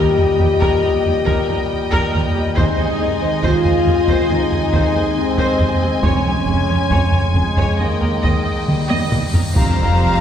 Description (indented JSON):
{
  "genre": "cinematic, epic orchestral film score",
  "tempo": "69 BPM",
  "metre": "4/4",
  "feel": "straight",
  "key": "unclear",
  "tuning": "A4 = 440 Hz",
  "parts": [
    { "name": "warm symphonic violin section", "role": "melody", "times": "0.0-10.2 s", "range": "G5 to Bb5", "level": "-29 LUFS", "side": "left 3 dB", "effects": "none" },
    { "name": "rich symphonic violin section", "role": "second line", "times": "0.0-10.2 s", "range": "Eb5 to Ab5", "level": "-25 LUFS", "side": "left 4 dB", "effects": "none" },
    { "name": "rich symphonic viola section", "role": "accompaniment", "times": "0.0-10.2 s", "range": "C4 to Eb5", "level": "-26 LUFS", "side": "right 1 dB", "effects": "none" },
    { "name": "bright trombone section", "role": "sustained chords", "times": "0.0-10.2 s", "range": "Bb2 to Ab3", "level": "-26 LUFS", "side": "equal", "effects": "none" },
    { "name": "warm French horn section", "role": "sustained chords", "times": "0.0-10.2 s", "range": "Ab3 to G4", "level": "-20 LUFS", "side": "left 3 dB", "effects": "none" },
    { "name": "clear symphonic cello section", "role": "bass", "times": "0.0-10.2 s", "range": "Eb2 to F2", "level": "-23 LUFS", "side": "right 2 dB", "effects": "none" },
    { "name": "rich symphonic double bass section", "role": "bass", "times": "0.0-10.2 s", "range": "F1 to Eb2", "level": "-24 LUFS", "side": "right 2 dB", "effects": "none" },
    { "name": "solo taiko drums", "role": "drums", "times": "0.2-10.2 s", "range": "none", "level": "-20 LUFS", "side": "equal", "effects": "none" },
    { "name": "timpani", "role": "percussion", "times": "6.0-10.2 s", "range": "F2", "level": "-26 LUFS", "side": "equal", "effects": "none" },
    { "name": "cymbal swell and impact", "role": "sound effects", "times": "8.2-10.2 s", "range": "none", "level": "-30 LUFS", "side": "equal", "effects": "none" },
    { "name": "rich symphonic string section", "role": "sustained chords", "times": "9.5-10.2 s", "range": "C4 to F5", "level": "-26 LUFS", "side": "equal", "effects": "none" },
    { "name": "mellow hollow silver concert flute", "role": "second line", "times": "9.6-10.2 s", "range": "Bb5", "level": "-22 LUFS", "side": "left 2 dB", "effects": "none" }
  ],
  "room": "wet concert hall reverb, RT60 2.4 s",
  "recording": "heard from further back in the room",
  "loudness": "-14 LUFS",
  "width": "side -9 dB against mid",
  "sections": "0.0-9.6 A section",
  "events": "cymbal swell 8.2-9.6; drum fill 8.7-9.6; impact 9.6-10.2",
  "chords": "0.0 Eb; 2.6 Ab/Eb; 6.0 Db/F; 7.8 Eb; 9.6 Fsus2"
}